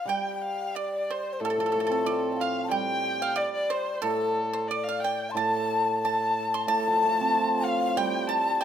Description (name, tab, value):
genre	chinese traditional, Chinese chamber ensemble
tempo	91 BPM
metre	2/4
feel	straight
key	unclear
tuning	A4 = 443 Hz
part	dark erhu	melody	0.0-8.6 s	A4 to A5	-29 LUFS	left 1 dB	none
part	breathy low xiao	second line	0.0-8.6 s	A4 to C6	-30 LUFS	left 6 dB	none
part	pipa	second line	0.0-8.6 s	A4 to C6	-31 LUFS	right 7 dB	none
part	hammered dulcimer	accompaniment	0.1-8.6 s	A2 to F4	-30 LUFS	right 4 dB	none
room	light reverb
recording	close, detailed microphones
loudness	-24 LUFS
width	side -9 dB against mid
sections	0.1-8.6 A section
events	none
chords	none